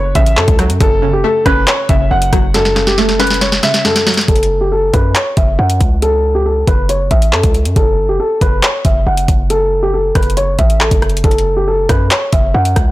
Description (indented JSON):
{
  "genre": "hip hop, drill",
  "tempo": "138 BPM",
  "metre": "4/4",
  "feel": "half-time",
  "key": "F# phrygian",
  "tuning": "A4 = 439 Hz",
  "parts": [
    { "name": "warm upright piano", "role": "melody", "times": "0.0-12.9 s", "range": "G4 to F#5", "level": "-15 LUFS", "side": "equal", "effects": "low-pass filter" },
    { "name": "string-like resonator pluck", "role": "accompaniment", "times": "0.0-4.3 s", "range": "F#2 to C#4", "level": "-19 LUFS", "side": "equal", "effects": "chorus, low-pass filter" },
    { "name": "hard-hitting 808-style bass", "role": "bass", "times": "0.0-12.9 s", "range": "F#1 to F#2", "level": "-16 LUFS", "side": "equal", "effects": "none" },
    { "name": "drill drum kit", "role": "drums", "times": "0.2-12.9 s", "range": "handclaps, hi-hat, kick drum, rim click, snare drum", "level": "-13 LUFS", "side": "equal", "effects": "none" }
  ],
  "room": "little or no reverb",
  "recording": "blown-out, overdriven recording, overdrive",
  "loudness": "-10 LUFS",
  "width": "side -17 dB against mid",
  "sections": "0.0-4.3 A section; 4.3-12.9 B section",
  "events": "drum fill 2.5-4.3",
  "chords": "0.0 F#m",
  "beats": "0.37 | 0.81 1.24 1.68 2.11 | 2.54 2.98 3.41 3.85 | 4.28 4.72 5.15 5.59 | 6.02 6.46 6.89 7.33 | 7.76 8.20 8.63 9.07 | 9.50 9.94 10.37 10.80 | 11.24 11.68 12.11 12.54"
}